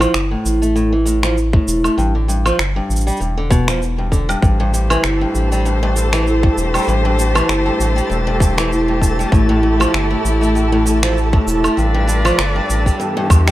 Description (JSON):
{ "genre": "folktronica", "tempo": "98 BPM", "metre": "4/4", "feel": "swing 56% on 16ths", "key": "A minor", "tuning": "A4 = 437 Hz", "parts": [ { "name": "picked old ladder-braced acoustic guitar", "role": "arpeggios", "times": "0.0-13.5 s", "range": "G2 to A3", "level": "-18 LUFS", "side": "equal", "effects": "low-pass filter, digital delay" }, { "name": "round analog bass", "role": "bass", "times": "0.0-13.5 s", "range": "E1 to E2", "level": "-18 LUFS", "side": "equal", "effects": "none" }, { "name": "electronic woodblock, shaker and finger snaps", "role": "drums", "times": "0.0-13.5 s", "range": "none", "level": "-22 LUFS", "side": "right 1 dB", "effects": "none" }, { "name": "electronic kick drum", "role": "drums", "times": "1.5-13.4 s", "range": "none", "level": "-14 LUFS", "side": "equal", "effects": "none" }, { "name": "warm string quartet", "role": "sustained chords", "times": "4.4-13.5 s", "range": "E3 to D5", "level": "-22 LUFS", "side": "left 2 dB", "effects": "none" }, { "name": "twinkling granular texture", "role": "texture", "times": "4.9-13.5 s", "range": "A4 to A5", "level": "-25 LUFS", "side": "right 3 dB", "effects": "built-in reverb" } ], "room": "light reverb", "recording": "none", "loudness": "-13 LUFS", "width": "side -15 dB against mid", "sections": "0.0-13.5 A section", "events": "none", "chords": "0.0 Fmaj7; 2.0 G5; 4.4 Am7; 9.3 Fmaj7 (rootless); 11.8 G7/A; 13.0 Em", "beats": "0.14 0.75 1.36 | 1.98 2.59 3.20 3.81 | 4.43 5.04 5.65 6.26 | 6.88 7.49 8.10 8.71 | 9.32 9.94 10.55 11.16 | 11.77 12.39 13.00" }